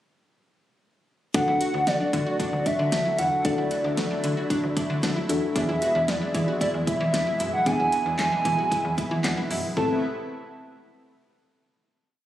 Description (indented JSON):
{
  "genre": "synth-pop",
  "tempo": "114 BPM",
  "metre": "4/4",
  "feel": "straight",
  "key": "unclear",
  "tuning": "A4 = 440 Hz",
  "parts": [
    { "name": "hollow clarinet-like synth lead", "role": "melody", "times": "1.3-10.0 s", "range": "D5 to A5", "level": "-26 LUFS", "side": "right 1 dB", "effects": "chorus, digital delay" },
    { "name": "mellow FM electric piano", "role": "accompaniment", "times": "1.3-10.0 s", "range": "B3 to F#5", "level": "-31 LUFS", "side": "left 3 dB", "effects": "chorus" },
    { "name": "lush unison pad", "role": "sustained chords", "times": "1.3-10.0 s", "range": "B2 to F#4", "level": "-31 LUFS", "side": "equal", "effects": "chorus" },
    { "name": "wide unison pluck", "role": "arpeggios", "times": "1.3-10.0 s", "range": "A3 to F#4", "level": "-33 LUFS", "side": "equal", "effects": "digital delay" },
    { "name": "slap-like FM bass", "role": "bass", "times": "1.3-10.0 s", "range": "A1 to E3", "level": "-29 LUFS", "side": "equal", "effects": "none" },
    { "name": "pop drum kit", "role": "drums", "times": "1.3-9.9 s", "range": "handclaps, hi-hat, kick drum, snare drum, toms", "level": "-29 LUFS", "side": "equal", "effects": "overdrive" }
  ],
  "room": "light reverb",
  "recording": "recorded on a phone in the room, studio reverb, compression",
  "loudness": "-22 LUFS",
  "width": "side -12 dB against mid",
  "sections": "1.3-9.8 pre-chorus; 9.8-11.9 final chord",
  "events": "FM electric piano fill 9.0-9.8",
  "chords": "1.3 D; 5.6 E; 9.8 Amadd9"
}